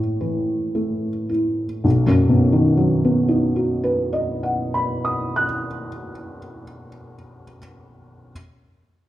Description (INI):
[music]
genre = neoclassical minimalist piano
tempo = 56 BPM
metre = 4/4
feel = rubato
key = B mixolydian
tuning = A4 = 440 Hz
[part]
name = felt-muted upright piano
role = solo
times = 0.0-8.3 s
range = B1 to F#6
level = -19 LUFS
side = equal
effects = none
[sound]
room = wet recital hall reverb, RT60 1.7 s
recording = recorded in a church or concert hall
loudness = -18 LUFS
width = side -14 dB against mid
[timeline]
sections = 0.0-1.8 A section; 1.8-6.1 B section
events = slowing down 0.0-1.8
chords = 0.0 A; 1.8 B